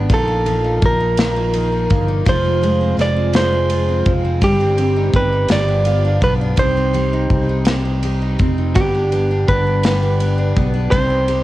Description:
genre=six-eight pop ballad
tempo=56 BPM (dotted quarters)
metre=6/8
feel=straight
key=unclear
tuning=A4 = 440 Hz
part: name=picked steel-string acoustic guitar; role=accompaniment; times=0.0-11.4 s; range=G2 to G4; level=-22 LUFS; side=equal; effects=double-tracked left and right
part: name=picked steel-string acoustic guitar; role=arpeggios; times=0.0-11.4 s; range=Eb3 to Ab4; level=-27 LUFS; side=left 2 dB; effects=none
part: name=fingered electric bass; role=bass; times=0.0-11.4 s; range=F1 to C2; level=-19 LUFS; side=equal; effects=none
part: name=direct-recorded clean electric guitar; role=melody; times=0.1-11.4 s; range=G4 to D5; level=-19 LUFS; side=right 1 dB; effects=none
part: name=modern studio drum kit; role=drums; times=0.1-11.4 s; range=kick drum, ride cymbal, snare drum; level=-20 LUFS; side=equal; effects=cassette tape
room=light reverb, small room ambience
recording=home recording on cassette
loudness=-14 LUFS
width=side -16 dB against mid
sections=0.0-11.4 A section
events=none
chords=0.1 Bbsus4; 2.3 Fm; 4.4 Cm/G; 5.5 G7; 6.6 Cm; 8.8 G; 10.9 Cm

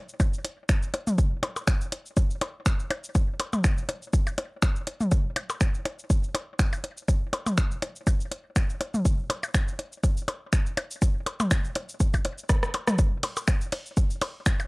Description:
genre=techno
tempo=122 BPM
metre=4/4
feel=swing 55% on 16ths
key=none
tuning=none
part: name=house drum kit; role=drums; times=0.1-14.7 s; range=cabasa, finger snaps, hi-hat, ride cymbal, rim click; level=-31 LUFS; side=equal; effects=none
part: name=electronic kick drum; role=drums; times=0.2-14.6 s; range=none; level=-23 LUFS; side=equal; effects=none
part: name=electronic percussion blips and toms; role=percussion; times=0.2-14.7 s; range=none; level=-30 LUFS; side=left 1 dB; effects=none
room=little or no reverb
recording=dry, gritty hardware recording, transformer saturation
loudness=-24 LUFS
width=side -28 dB against mid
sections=0.0-14.7 A section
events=drum fill 12.5-13.0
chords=none

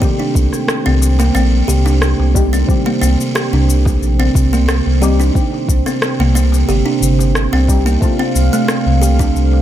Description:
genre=organic downtempo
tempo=90 BPM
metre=4/4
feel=swing 53% on 16ths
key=C dorian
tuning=A4 = 440 Hz
part: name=deep mellow chord stab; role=accompaniment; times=0.0-9.6 s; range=Eb3 to G4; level=-23 LUFS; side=left 4 dB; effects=chorus, sidechain pumping, tape echo
part: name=warm analog pad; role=sustained chords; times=0.0-9.6 s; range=C3 to G5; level=-21 LUFS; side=right 4 dB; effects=chorus, sidechain pumping
part: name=buzzing kalimba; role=arpeggios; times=0.0-9.6 s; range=A3 to G4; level=-18 LUFS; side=right 1 dB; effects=tape echo
part: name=electronic kick drum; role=drums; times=0.0-9.3 s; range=none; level=-15 LUFS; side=equal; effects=overdrive
part: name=electronic shaker and rim click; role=drums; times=0.0-9.5 s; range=none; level=-21 LUFS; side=left 1 dB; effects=overdrive
part: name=bronze singing bowl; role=texture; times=0.0-9.6 s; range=A3 to A4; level=-33 LUFS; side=left 2 dB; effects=none
part: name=warm sub bass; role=bass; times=0.4-9.6 s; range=G1 to C2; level=-13 LUFS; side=equal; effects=sidechain pumping
part: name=darbuka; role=percussion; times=0.9-9.6 s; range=none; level=-24 LUFS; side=left 2 dB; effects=none
room=light reverb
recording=none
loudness=-11 LUFS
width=side -11 dB against mid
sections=0.0-9.6 A section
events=none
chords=0.0 Cm; 8.0 Dm7/C

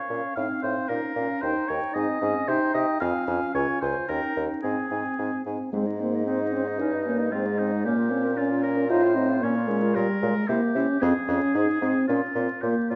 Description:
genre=quick classical-period movement for wind quintet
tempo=113 BPM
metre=2/4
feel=straight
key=Ab major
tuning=A4 = 441 Hz
part: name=concert flute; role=melody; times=0.0-13.0 s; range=Bb4 to Ab5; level=-37 LUFS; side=equal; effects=none
part: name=warm oboe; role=second line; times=0.0-13.0 s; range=Eb4 to F5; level=-33 LUFS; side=equal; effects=none
part: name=clear clarinet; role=accompaniment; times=0.0-13.0 s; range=C4 to Ab4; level=-36 LUFS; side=equal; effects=none
part: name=mellow French horn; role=accompaniment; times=0.0-13.0 s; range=G3 to F4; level=-29 LUFS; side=equal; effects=none
part: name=warm bassoon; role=bass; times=0.1-13.0 s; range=Db2 to C3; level=-31 LUFS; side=equal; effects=none
room=moderate recital hall reverb, RT60 1.4 s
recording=dark, warm production, vinyl crackle, nothing above 7.6 kHz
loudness=-25 LUFS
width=mono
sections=0.0-5.7 A section; 5.7-13.0 A section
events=none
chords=0.4 F7/A; 0.9 Bbm; 1.4 Eb; 1.9 Ab; 2.5 Cm; 3.0 Fm; 3.5 Db; 4.1 Eb7; 4.6 Ab; 6.8 Eb7/G; 7.3 Ab; 7.9 Bbm; 8.9 F7/A; 9.4 Bbm; 10.5 C7; 11.0 Fm; 11.5 Ab; 12.1 Bbm

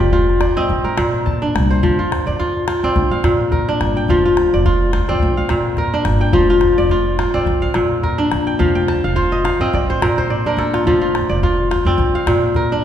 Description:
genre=west african traditional, West African string and xylophone music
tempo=106 BPM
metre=4/4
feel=swing 55% on 16ths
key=F mixolydian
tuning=A4 = 445 Hz
part: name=kora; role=arpeggios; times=0.0-12.8 s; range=Bb2 to A5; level=-16 LUFS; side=equal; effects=none
part: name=upright bass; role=bass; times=0.0-12.7 s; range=F1 to F3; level=-20 LUFS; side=equal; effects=none
part: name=calabash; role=percussion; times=0.0-12.7 s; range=none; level=-23 LUFS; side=left 2 dB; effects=none
room=wet recital hall reverb, RT60 1.8 s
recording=recorded in a church or concert hall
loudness=-14 LUFS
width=side -10 dB against mid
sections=0.0-1.8 A section; 1.8-12.8 B section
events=kora fill 8.6-10.9; drum fill 10.2-10.9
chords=0.0 F; 0.7 Bb; 1.8 F5; 3.0 Bb; 4.1 F5; 5.2 Bb; 6.3 F5; 7.5 Bb; 8.6 F5; 9.7 Bb; 10.9 F5; 12.0 Bb

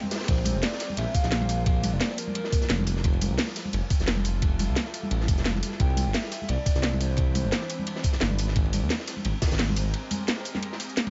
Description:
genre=liquid drum and bass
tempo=174 BPM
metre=4/4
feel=swing 54% on 16ths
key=Bb lydian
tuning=A4 = 441 Hz
part: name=shimmering ambient pad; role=sustained chords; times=0.0-11.1 s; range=E3 to B5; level=-40 LUFS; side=equal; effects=chorus, built-in reverb, phaser, sidechain pumping
part: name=crunchy breakbeat drum kit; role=drums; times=0.0-11.1 s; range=hi-hat, ride cymbal, snare drum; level=-39 LUFS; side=equal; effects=high-pass filter on cymbals, high-pass filter on hats, high-pass filter on snare, high-pass filter on room
part: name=congas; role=percussion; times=0.0-11.1 s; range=none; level=-36 LUFS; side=equal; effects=none
part: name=garage drum kit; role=drums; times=0.1-11.0 s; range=hi-hat, ride cymbal, snare drum, tambourine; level=-33 LUFS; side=equal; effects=none
part: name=hollow clarinet-like synth lead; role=melody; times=0.3-2.8, 5.8-8.0 s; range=Bb4 to G5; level=-38 LUFS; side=equal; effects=subtle chorus, tape echo
part: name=smooth gliding synth bass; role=bass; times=0.3-9.9 s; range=F1 to Eb2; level=-30 LUFS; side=equal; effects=none
part: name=electronic kick drum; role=drums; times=0.3-9.5 s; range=none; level=-27 LUFS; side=equal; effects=none
room=small room reverb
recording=nothing above 7.7 kHz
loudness=-26 LUFS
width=mono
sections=0.0-11.1 A section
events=break 0.0, 9.9-11.1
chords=0.3 Bbadd9; 2.9 Fmaj9; 5.6 Cmaj9; 8.4 Abmaj9

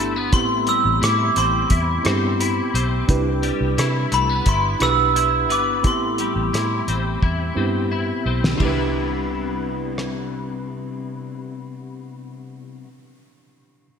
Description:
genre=indie pop, bedroom pop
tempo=87 BPM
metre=4/4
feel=straight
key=C major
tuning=A4 = 438 Hz
part: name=glockenspiel with brass mallets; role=melody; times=0.0-7.9 s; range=B5 to E6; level=-22 LUFS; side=right 1 dB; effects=lush chorus
part: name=mellow reed electric piano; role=accompaniment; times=0.0-13.9 s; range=B3 to B4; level=-26 LUFS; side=right 3 dB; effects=medium tremolo, cassette tape
part: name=twelve-string electric guitar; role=accompaniment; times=0.0-12.9 s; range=A2 to E4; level=-26 LUFS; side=left 5 dB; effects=ensemble chorus, vibrato effect
part: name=vintage muted fingered electric bass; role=bass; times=0.0-12.8 s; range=G1 to C3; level=-24 LUFS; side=equal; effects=none
part: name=cloth-damped thuddy drum kit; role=drums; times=0.3-10.1 s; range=hi-hat, kick drum, ride cymbal, rim click, snare drum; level=-22 LUFS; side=equal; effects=gated reverb
room=moderate lush hall reverb, RT60 1.9 s, small room reverb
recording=bright 1980s-style digital production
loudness=-18 LUFS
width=side -7 dB against mid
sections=0.0-8.6 A section; 8.6-11.4 B section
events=drum fill 7.2-8.6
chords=0.3 Am7; 3.1 Cmaj7; 5.8 Am7; 8.6 Cmaj7

